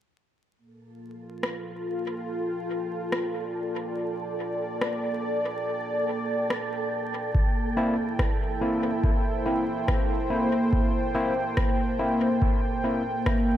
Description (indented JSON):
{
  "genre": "ambient dub",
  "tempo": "71 BPM",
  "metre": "4/4",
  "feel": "swing 53% on 16ths",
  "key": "G dorian",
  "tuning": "A4 = 440 Hz",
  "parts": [
    { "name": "warm analog pad", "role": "sustained chords", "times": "0.6-13.6 s", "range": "Bb3 to G5", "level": "-28 LUFS", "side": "equal", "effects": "chorus" },
    { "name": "wind-like tuned noise texture", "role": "texture", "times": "1.1-13.6 s", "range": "A4", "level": "-35 LUFS", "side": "right 4 dB", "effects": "built-in reverb" },
    { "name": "electronic rim click", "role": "drums", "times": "1.4-13.4 s", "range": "none", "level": "-33 LUFS", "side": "left 1 dB", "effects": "overdrive, studio ambience, dub echo" },
    { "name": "electronic kick drum", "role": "drums", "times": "7.3-13.4 s", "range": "none", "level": "-26 LUFS", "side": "equal", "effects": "overdrive, studio ambience" },
    { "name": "overdriven tine electric piano", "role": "stabs", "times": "7.8-13.0 s", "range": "Bb3 to E4", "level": "-30 LUFS", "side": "left 2 dB", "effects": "dub echo" }
  ],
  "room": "moderate spring reverb, RT60 2.6 s",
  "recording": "vinyl crackle",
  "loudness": "-24 LUFS",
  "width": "side -11 dB against mid",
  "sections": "0.6-13.6 A section",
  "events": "none",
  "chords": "0.6 Gm7; 7.3 C7"
}